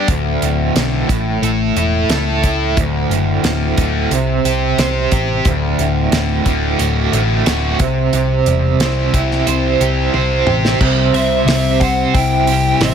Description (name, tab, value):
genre	classic rock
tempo	90 BPM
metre	4/4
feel	straight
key	unclear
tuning	A4 = 440 Hz
part	cranked stack guitar	riff	0.0-12.9 s	D2 to C5	-18 LUFS	right 11 dB	overdrive, tremolo
part	sludgy distorted guitar	riff	0.0-12.9 s	D2 to C5	-19 LUFS	left 10 dB	overdrive
part	hollow-body short-scale picked electric bass	bass	0.1-12.9 s	D1 to C#2	-19 LUFS	equal	none
part	damped 70s drum kit	drums	0.1-12.9 s	crash cymbal, hi-hat, kick drum, snare drum, toms	-19 LUFS	equal	none
part	biting lead guitar	melody	11.1-12.9 s	E5 to G5	-18 LUFS	left 3 dB	overdrive, slapback echo
room	light reverb, studio ambience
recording	none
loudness	-13 LUFS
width	side -8 dB against mid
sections	0.0-10.8 A section; 10.8-12.9 B section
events	drum fill 10.1-10.8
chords	0.1 D5; 1.1 A; 2.8 D; 4.1 C5; 5.5 D; 7.8 C